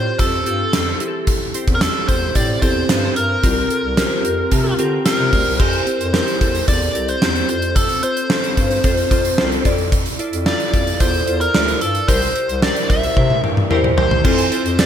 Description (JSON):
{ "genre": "1980s-style pop", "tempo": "111 BPM", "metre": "4/4", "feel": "straight", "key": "unclear", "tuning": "A4 = 439 Hz", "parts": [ { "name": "biting lead guitar", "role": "melody", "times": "0.0-14.9 s", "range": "A4 to E5", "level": "-21 LUFS", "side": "equal", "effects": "overdrive, ping-pong delay" }, { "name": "glassy digital keys", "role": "accompaniment", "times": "0.0-14.9 s", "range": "C3 to Bb5", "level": "-21 LUFS", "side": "equal", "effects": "chorus" }, { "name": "mellow bass clarinet", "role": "bass", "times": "0.0-14.9 s", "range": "C2 to D3", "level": "-23 LUFS", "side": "equal", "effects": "none" }, { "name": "gated 80s drum kit", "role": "drums", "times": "0.2-14.9 s", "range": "crash cymbal, hi-hat, kick drum, snare drum, tambourine, toms", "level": "-18 LUFS", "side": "equal", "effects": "gated reverb" } ], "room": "moderate lush hall reverb, RT60 1.8 s, small room ambience", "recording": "bright 1980s-style digital production", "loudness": "-15 LUFS", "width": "side -9 dB against mid", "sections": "0.0-5.6 A section; 5.6-14.2 B section", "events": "synth keys fill 4.0-5.6; drum fill 13.2-14.2", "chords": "0.0 Fadd9; 1.0 Am7/E; 3.4 C7sus4; 5.6 C7; 7.5 F; 9.7 Dmadd9/F; 12.1 C7; 14.2 Fmaj7" }